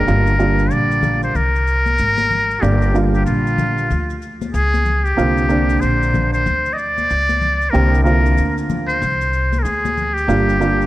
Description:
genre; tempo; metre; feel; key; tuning
hip hop, jazz-hop; 94 BPM; 4/4; swing 62% on 16ths; unclear; A4 = 440 Hz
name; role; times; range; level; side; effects
trumpet with metal mute; melody; 0.0-10.9 s; F4 to Eb5; -19 LUFS; equal; tape echo
upright bass; bass; 0.0-10.9 s; G1 to D2; -19 LUFS; equal; none
warm upright piano; accompaniment; 0.1-10.9 s; D3 to G4; -19 LUFS; right 2 dB; none
maracas and congas; percussion; 0.1-10.9 s; none; -27 LUFS; left 4 dB; none
room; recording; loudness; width
moderate concert hall reverb, RT60 1.8 s; dry, gritty hardware recording; -14 LUFS; side -16 dB against mid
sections
0.1-10.9 A section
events
none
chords
0.1 Gm7; 5.2 C9sus4; 10.3 Gm7

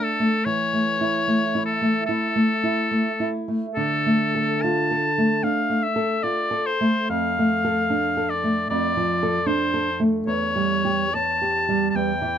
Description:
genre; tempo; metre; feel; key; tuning
romantic duo for oboe and classical guitar; 73 BPM; 4/4; uneven beats, rubato; D minor; A4 = 443 Hz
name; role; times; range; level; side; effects
bright oboe; melody; 0.0-12.4 s; A4 to A5; -23 LUFS; left 2 dB; none
nylon-string guitar; accompaniment; 0.0-12.4 s; E2 to C#5; -22 LUFS; right 1 dB; none
room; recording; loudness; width
light reverb; close, detailed microphones; -20 LUFS; side -9 dB against mid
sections
0.0-12.4 A section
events
none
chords
0.5 A/E; 3.8 Dm; 7.1 Dm/F; 10.3 C#dim/E

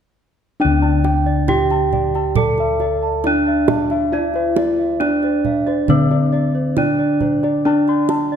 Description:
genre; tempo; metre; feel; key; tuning
Javanese gamelan; 68 BPM; 4/4; straight; D slendro; A4 = 440 Hz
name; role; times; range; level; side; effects
gamelan-type bronze metallophone; melody; 0.6-8.4 s; C4-40c to A4+20c; -18 LUFS; right 1 dB; none
gamelan-type bossed gongs; arpeggios; 0.6-8.3 s; C5-40c to C6-40c; -24 LUFS; left 6 dB; none
gamelan-type bronze metallophone; arpeggios; 0.6-8.4 s; C5-40c to A5+20c; -26 LUFS; right 7 dB; none
gamelan-type bossed gongs; bass; 0.6-8.4 s; D2 to E4+40c; -20 LUFS; left 2 dB; none
kendang; percussion; 0.8-8.3 s; none; -24 LUFS; right 6 dB; none
room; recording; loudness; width
moderate scoring stage reverb, RT60 1.6 s; dark, warm production; -15 LUFS; side -8 dB against mid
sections
0.6-8.4 A section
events
none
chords
none

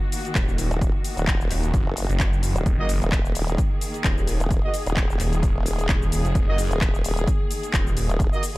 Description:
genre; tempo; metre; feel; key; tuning
bass house; 130 BPM; 4/4; swing 55% on 16ths; Eb minor; A4 = 440 Hz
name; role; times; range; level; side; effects
rich symphonic string section; sustained chords; 0.0-8.6 s; Eb3 to Ab4; -32 LUFS; left 1 dB; sidechain pumping, low-pass filter
house drum kit; drums; 0.1-8.5 s; handclaps, hi-hat, shaker; -30 LUFS; left 1 dB; none
phased detuned saw bass; bass; 0.4-8.1 s; Eb1 to Gb1; -24 LUFS; equal; phaser, tube saturation, sidechain pumping
electronic kick drum; drums; 0.4-8.3 s; none; -23 LUFS; equal; none
formant-sweep wobble bass; bass; 0.7-8.6 s; Eb1 to Gb1; -24 LUFS; equal; chorus, tube saturation, sidechain pumping
clear horn section; stabs; 2.8-8.4 s; Bb3 to Eb5; -31 LUFS; right 2 dB; sidechain pumping, tape echo
room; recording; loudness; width
little or no reverb; dark, warm production; -20 LUFS; side -20 dB against mid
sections
0.0-8.6 A section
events
none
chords
0.0 Ebm

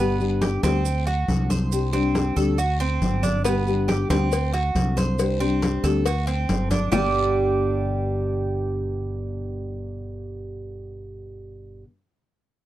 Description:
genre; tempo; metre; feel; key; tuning
latin, Cuban son and guajira; 138 BPM; 4/4; straight; G major; A4 = 435 Hz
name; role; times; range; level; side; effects
nylon-string guitar; accompaniment; 0.0-11.9 s; G2 to G4; -27 LUFS; left 3 dB; none
Cuban tres; arpeggios; 0.0-11.8 s; G3 to C5; -27 LUFS; right 4 dB; none
mellow fretless electric bass; bass; 0.0-11.8 s; G1 to D2; -26 LUFS; equal; none
congas; percussion; 0.2-7.0 s; none; -26 LUFS; left 1 dB; none
maracas; percussion; 0.2-7.0 s; none; -39 LUFS; right 16 dB; none
guiro; percussion; 0.4-7.0 s; none; -41 LUFS; left 13 dB; none
cowbell and bongos; percussion; 3.5-7.0 s; none; -28 LUFS; left 7 dB; none
room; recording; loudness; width
light reverb; dry, close 1970s-style studio recording; -20 LUFS; side -13 dB against mid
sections
0.0-6.9 A section; 6.9-10.4 B section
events
drum fill 6.7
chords
0.0 G; 0.8 D7; 1.7 Csus2; 2.6 D7; 3.5 G; 4.3 D7; 5.2 Csus2; 6.1 D7; 6.9 G

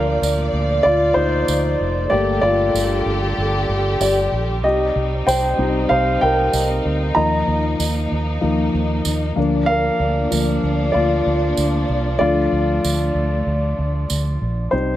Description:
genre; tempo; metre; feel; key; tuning
piano-driven pop; 95 BPM; 4/4; straight; unclear; A4 = 436 Hz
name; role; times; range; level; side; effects
dark grand piano; accompaniment; 0.0-15.0 s; D3 to Bb5; -19 LUFS; left 1 dB; none
warm studio string section; sustained chords; 0.0-14.7 s; Bb2 to D5; -24 LUFS; right 1 dB; none
vintage muted fingered electric bass; bass; 0.0-15.0 s; F1 to Eb2; -22 LUFS; right 1 dB; none
tambourine; percussion; 0.2-14.2 s; none; -28 LUFS; right 8 dB; none
room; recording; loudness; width
light reverb, small room ambience; none; -16 LUFS; side -13 dB against mid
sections
0.0-14.7 A section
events
grand piano solo 0.0-14.7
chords
0.0 Bb/D; 2.1 Gmadd9; 4.6 Cm; 7.2 Ebsus2; 9.4 Bb/D; 12.2 Dm

